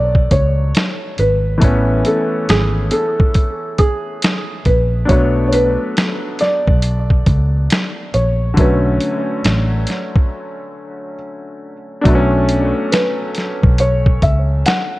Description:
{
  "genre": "lo-fi hip hop",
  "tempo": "69 BPM",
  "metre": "4/4",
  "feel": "swing 62% on 16ths",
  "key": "B dorian",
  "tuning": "A4 = 439 Hz",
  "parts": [
    { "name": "felt-muted upright piano", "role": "melody", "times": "0.0-15.0 s", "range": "G#4 to F#5", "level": "-20 LUFS", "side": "equal", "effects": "low-pass filter, analog delay" },
    { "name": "bright upright piano", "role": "accompaniment", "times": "0.0-15.0 s", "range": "D3 to D4", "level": "-21 LUFS", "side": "left 1 dB", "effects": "cassette tape, low-pass filter, analog delay" },
    { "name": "vintage muted fingered electric bass", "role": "bass", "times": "0.0-14.6 s", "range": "G#1 to C#2", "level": "-16 LUFS", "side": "equal", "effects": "none" },
    { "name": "lo-fi sampler-style drum kit", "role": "drums", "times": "0.1-14.9 s", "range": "hi-hat, kick drum, snare drum", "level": "-15 LUFS", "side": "equal", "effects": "vintage 12-bit sampler grit" }
  ],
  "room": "light reverb",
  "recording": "echo-heavy mix",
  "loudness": "-13 LUFS",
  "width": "side -18 dB against mid",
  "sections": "0.0-12.1 A section; 12.1-15.0 B section",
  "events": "break 10.3-12.1",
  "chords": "0.0 Bm9; 1.6 Amaj9; 5.1 Bm9"
}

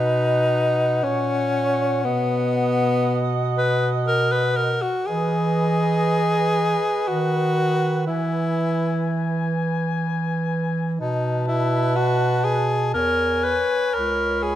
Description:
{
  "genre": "classical, lyrical piece for single-reed quartet",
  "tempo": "60 BPM",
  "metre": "3/4",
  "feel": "rubato",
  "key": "B major",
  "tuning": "A4 = 441 Hz",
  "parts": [
    { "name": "dark soprano saxophone", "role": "melody", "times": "0.0-14.6 s", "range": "D#5 to B5", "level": "-30 LUFS", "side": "left 8 dB", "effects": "none" },
    { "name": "mellow alto saxophone", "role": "second line", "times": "0.0-14.6 s", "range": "B4 to D#5", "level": "-30 LUFS", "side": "right 8 dB", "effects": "none" },
    { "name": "warm tenor saxophone", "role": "accompaniment", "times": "0.0-14.6 s", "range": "B3 to B4", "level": "-22 LUFS", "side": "left 1 dB", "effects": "none" },
    { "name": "warm bass clarinet", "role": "bass", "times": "0.0-14.6 s", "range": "C#2 to E3", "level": "-24 LUFS", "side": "right 2 dB", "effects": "none" }
  ],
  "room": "light reverb",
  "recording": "close, detailed microphones, faint mains hum",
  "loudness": "-19 LUFS",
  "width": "side -12 dB against mid",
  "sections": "0.0-14.6 A section",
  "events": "none",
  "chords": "0.0 B; 1.0 F#/A#; 2.0 B; 5.1 Emaj7; 7.1 B/D#; 8.1 E; 11.0 B7; 12.9 E6; 13.9 C#7(no3)"
}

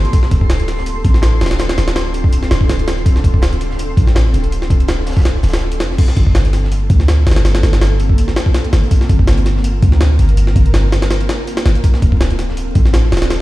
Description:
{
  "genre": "drum and bass, jungle",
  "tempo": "164 BPM",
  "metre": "4/4",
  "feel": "swing 54% on 16ths",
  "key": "G minor",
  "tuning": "A4 = 440 Hz",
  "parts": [
    { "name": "ethereal airy pad", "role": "sustained chords", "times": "0.0-13.4 s", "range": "Bb3 to Bb4", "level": "-23 LUFS", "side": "equal", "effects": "ensemble chorus, built-in reverb, tremolo, vintage 12-bit sampler grit" },
    { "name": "warm 808-style bass", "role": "bass", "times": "0.0-13.4 s", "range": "D1 to D2", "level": "-14 LUFS", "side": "equal", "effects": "tube saturation" },
    { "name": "crunchy breakbeat drum kit", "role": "drums", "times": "0.0-13.4 s", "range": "hi-hat, snare drum", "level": "-34 LUFS", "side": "right 2 dB", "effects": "none" },
    { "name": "jungle sampler-style drum kit", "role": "drums", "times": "0.0-13.4 s", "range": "crash cymbal, hi-hat, kick drum, snare drum", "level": "-14 LUFS", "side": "equal", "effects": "none" },
    { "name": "twinkling granular texture", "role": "texture", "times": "0.0-6.0 s", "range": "C6", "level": "-31 LUFS", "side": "equal", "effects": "built-in reverb" }
  ],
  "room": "little or no reverb",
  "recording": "played on a big sound system in a bare room, large studio reverb, vinyl crackle",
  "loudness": "-11 LUFS",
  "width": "side -17 dB against mid",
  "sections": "0.0-6.0 A section; 6.0-13.4 A section",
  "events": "drop 0.0-6.0, 6.0-13.4",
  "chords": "0.1 Dm7; 6.0 Gm11; 11.8 Dm7"
}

